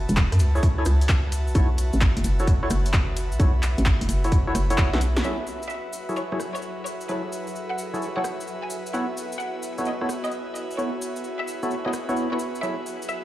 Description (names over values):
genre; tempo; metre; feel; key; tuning
UK garage, two-step garage; 130 BPM; 4/4; swing 67% on 16ths; F# minor; A4 = 440 Hz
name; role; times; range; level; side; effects
hollow knocking FM bass; bass; 0.0-5.2 s; E1 to F#2; -22 LUFS; equal; none
airy breathy pad; texture; 0.0-13.2 s; F#4 to A5; -33 LUFS; right 1 dB; chorus, sidechain pumping
punchy analog drum machine; drums; 0.1-12.1 s; handclaps, hi-hat, rim click, snare drum; -29 LUFS; equal; overdrive
cabasa; percussion; 0.1-13.2 s; none; -40 LUFS; left 2 dB; none
electronic kick drum; drums; 0.2-4.9 s; none; -21 LUFS; equal; none
percussive organ stab; stabs; 0.6-12.8 s; F#3 to C#5; -30 LUFS; equal; lush chorus, ping-pong delay
bright chamber violin section; melody; 5.2-13.2 s; B4 to G#5; -34 LUFS; equal; digital delay
ethereal airy pad; sustained chords; 5.8-13.2 s; F#3 to C#5; -38 LUFS; left 1 dB; ensemble chorus, built-in reverb, vintage 12-bit sampler grit, sidechain pumping
room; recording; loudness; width
light reverb, digital ambience; played on a big sound system in a bare room, large studio reverb, vinyl crackle; -22 LUFS; side -15 dB against mid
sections
0.0-5.2 A section; 5.2-13.2 B section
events
drum fill 4.9-5.2; band accent 5.1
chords
0.0 F#m9; 1.3 B7sus4; 5.2 F#m9; 8.7 B7sus4; 12.6 F#m9